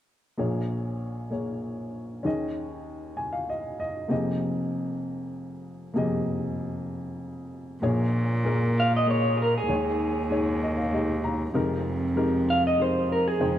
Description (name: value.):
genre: folk.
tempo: 97 BPM.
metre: 3/4.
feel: straight.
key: unclear.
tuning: A4 = 441 Hz.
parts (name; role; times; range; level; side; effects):
warm upright piano; accompaniment; 0.4-13.6 s; F1 to Bb5; -28 LUFS; left 1 dB; none.
warm cello; bass; 7.8-13.6 s; Eb2 to Bb2; -26 LUFS; equal; none.
electric guitar through a small old amp; melody; 8.8-13.6 s; Ab4 to F5; -25 LUFS; right 1 dB; tremolo.
room: light reverb.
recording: dark, warm production.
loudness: -24 LUFS.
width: side -11 dB against mid.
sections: 0.4-7.8 A section; 7.8-13.6 B section.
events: none.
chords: 0.4 Bbm7; 2.3 Eb7sus4; 4.1 Fm11; 7.8 Bbm7; 9.7 Eb7sus4; 11.5 Fm11.